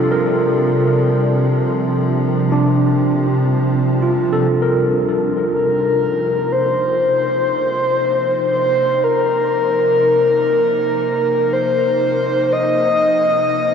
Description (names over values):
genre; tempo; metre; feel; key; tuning
ambient; free time; none; none; C dorian; A4 = 439 Hz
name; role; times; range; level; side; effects
evolving wavetable pad; sustained chords; 0.0-13.7 s; C3 to Eb4; -20 LUFS; equal; chorus, built-in reverb
barky tine electric piano; arpeggios; 0.0-13.7 s; D4 to Bb4; -20 LUFS; right 1 dB; medium stereo tremolo, tape echo
overtone-sweeping drone; drone; 0.0-4.6 s; C3 to G3; -24 LUFS; right 1 dB; chorus, built-in reverb, phaser
breathy flute-like synth lead; melody; 5.5-13.7 s; Bb4 to Eb5; -15 LUFS; left 1 dB; lush chorus, tape echo
room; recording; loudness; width
wet huge ambient reverb, RT60 7.6 s; dark, warm production; -14 LUFS; side -7 dB against mid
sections
0.0-4.5 A section; 4.5-13.7 B section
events
fade-in on ambient pad 4.5-13.7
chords
0.0 Gm/C; 4.5 Cm7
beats
free time